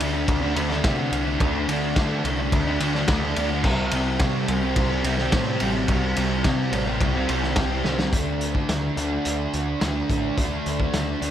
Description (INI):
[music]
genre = rock, shoegaze and dream pop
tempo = 107 BPM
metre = 4/4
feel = straight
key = unclear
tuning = A4 = 439 Hz
[part]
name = fuzz guitar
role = riff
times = 0.0-11.3 s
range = C3 to D4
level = -24 LUFS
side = equal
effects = distortion, analog chorus
[part]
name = growling picked electric bass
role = bass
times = 0.0-11.3 s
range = A1 to D3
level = -27 LUFS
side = equal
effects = overdrive
[part]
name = loose indie drum kit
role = drums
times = 0.0-11.3 s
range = crash cymbal, hi-hat, kick drum, ride cymbal, snare drum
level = -25 LUFS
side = equal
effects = none
[sound]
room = light reverb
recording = none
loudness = -21 LUFS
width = side -10 dB against mid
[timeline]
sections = 0.0-8.1 A section; 8.1-11.3 B section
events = drum fill 7.8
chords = 0.0 D5; 3.6 C5; 8.1 D5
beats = 0.28 0.84 | 1.40 1.96 2.52 3.08 | 3.64 4.20 4.76 5.32 | 5.88 6.44 7.00 7.57 | 8.13 8.69 9.25 9.81 | 10.38 10.94